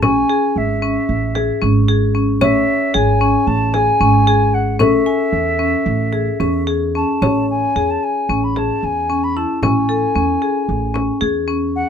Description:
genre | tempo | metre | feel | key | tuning
contemporary instrumental, chamber music in an uneven meter | 226 BPM (eighths) | 9/8 | straight | A lydian | A4 = 442 Hz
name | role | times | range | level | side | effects
silver concert flute | melody | 0.0-11.9 s | E5 to B5 | -19 LUFS | right 1 dB | none
kalimba | second line | 0.0-11.9 s | G#4 to D#5 | -22 LUFS | left 6 dB | none
marimba with hard mallets | arpeggios | 0.0-11.9 s | C#4 to G#5 | -18 LUFS | left 3 dB | none
upright bass | bass | 0.0-11.8 s | G#1 to E2 | -19 LUFS | right 3 dB | none
frame drum | percussion | 0.0-11.2 s | none | -22 LUFS | equal | none
room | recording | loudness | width
light reverb | minimal, uncompressed stereo recording | -14 LUFS | side -8 dB against mid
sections
0.0-7.2 A section; 7.2-11.9 B section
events
none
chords
0.0 C#m; 4.8 Amaj7

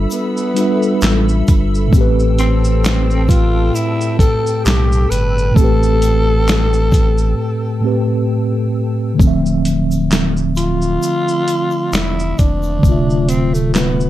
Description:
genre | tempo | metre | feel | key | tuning
lo-fi hip hop | 66 BPM | 4/4 | swing 55% on 16ths | D dorian | A4 = 440 Hz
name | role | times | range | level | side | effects
mellow tine electric piano | accompaniment | 0.0-14.1 s | A2 to E5 | -17 LUFS | equal | medium stereo tremolo
hollow soft pad | sustained chords | 0.0-9.2 s | A4 to E6 | -28 LUFS | left 2 dB | ensemble chorus, plate reverb
warm sub bass | bass | 0.0-14.1 s | D1 to B1 | -17 LUFS | equal | none
growling tenor saxophone | melody | 0.1-14.1 s | A3 to B4 | -20 LUFS | equal | plate reverb
dusty soul sampler-style drum kit | drums | 0.1-14.1 s | handclaps, hi-hat, kick drum, shaker, snare drum | -16 LUFS | equal | none
egg shaker | percussion | 0.1-14.0 s | none | -38 LUFS | left 6 dB | none
room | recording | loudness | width
light reverb | cassette tape | -12 LUFS | side -14 dB against mid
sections
0.0-9.2 A section; 9.2-14.1 B section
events
break 7.4-9.2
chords
0.0 G13; 1.9 Am7; 9.2 Dm7

